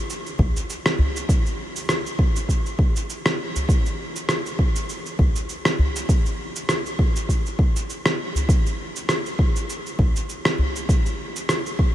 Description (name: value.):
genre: downtempo.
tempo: 100 BPM.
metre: 4/4.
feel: swing 55% on 16ths.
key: none.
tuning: none.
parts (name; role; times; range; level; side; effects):
electronic cabasa and rim click; drums; 0.1-11.8 s; none; -25 LUFS; equal; overdrive.
electronic kick drum; drums; 0.4-11.9 s; none; -19 LUFS; equal; none.
udu; percussion; 0.4-10.7 s; none; -23 LUFS; equal; none.
room: light reverb.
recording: none.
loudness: -20 LUFS.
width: side -13 dB against mid.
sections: 0.0-11.9 A section.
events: none.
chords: none.